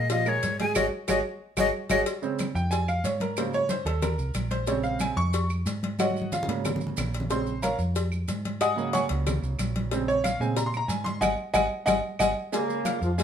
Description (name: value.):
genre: latin, salsa.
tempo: 183 BPM.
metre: 4/4.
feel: straight.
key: Bb minor.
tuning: A4 = 441 Hz.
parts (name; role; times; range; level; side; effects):
breathy bright jazz flute; melody; 0.0-2.0 s; Db5 to Ab5; -27 LUFS; left 6 dB; none.
bright baby grand piano; accompaniment; 0.0-13.2 s; Db3 to F6; -27 LUFS; right 2 dB; none.
hollow-body short-scale fingered electric bass; bass; 0.0-13.2 s; Ab1 to Bb2; -30 LUFS; right 1 dB; none.
congas; percussion; 0.1-13.2 s; none; -34 LUFS; left 2 dB; none.
cowbell; percussion; 0.1-13.2 s; none; -35 LUFS; left 6 dB; none.
maracas; percussion; 0.1-13.2 s; none; -40 LUFS; right 6 dB; none.
claves; percussion; 0.3-13.0 s; none; -37 LUFS; right 5 dB; none.
mellow trombone section; melody; 12.5-13.2 s; Ab2 to Bb3; -29 LUFS; right 2 dB; none.
room: moderate studio reverb, RT60 0.8 s.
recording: minimal, uncompressed stereo recording.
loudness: -24 LUFS.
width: side -8 dB against mid.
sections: 0.0-2.1 A section; 2.1-12.5 B section.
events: band accent 0.8-2.1, 11.2-12.5; drum fill 1.2-2.1, 6.0-7.3, 12.0-12.5; grand piano solo 2.1-12.5.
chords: 0.0 Bbm7; 0.8 Ab7sus4; 2.1 Fmadd9; 3.4 Ab7sus4; 4.7 Bbm7; 6.0 Ab7sus4; 7.3 Bbm7; 8.6 Ab7sus4; 9.9 Bbm7; 11.2 Ab5; 12.5 Bbm7.